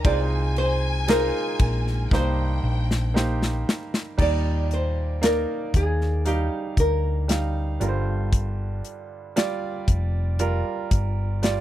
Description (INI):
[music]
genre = pop ballad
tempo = 58 BPM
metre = 4/4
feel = straight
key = unclear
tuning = A4 = 439 Hz
[part]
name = nylon-string guitar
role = melody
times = 0.0-7.8 s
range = G4 to D5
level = -27 LUFS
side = equal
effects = tape echo
[part]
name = rich studio violin section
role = second line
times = 0.0-3.7 s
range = G5 to Ab5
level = -34 LUFS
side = left 2 dB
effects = none
[part]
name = clear concert grand piano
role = accompaniment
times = 0.0-11.6 s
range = G2 to F5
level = -29 LUFS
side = right 4 dB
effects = none
[part]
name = hollow-body short-scale fingered electric bass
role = bass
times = 0.0-11.6 s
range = F1 to Eb2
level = -24 LUFS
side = equal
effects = none
[part]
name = modern studio drum kit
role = drums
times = 0.0-11.6 s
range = crash cymbal, hi-hat, kick drum, ride cymbal, snare drum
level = -22 LUFS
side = left 1 dB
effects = none
[sound]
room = studio ambience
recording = dry, close 1970s-style studio recording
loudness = -21 LUFS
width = side -13 dB against mid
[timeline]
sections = 0.0-4.2 A section; 4.2-11.6 B section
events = drum fill 2.1-4.2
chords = 0.1 Ab6/C; 2.1 Cm7; 4.2 Ebmaj7; 7.8 G7sus4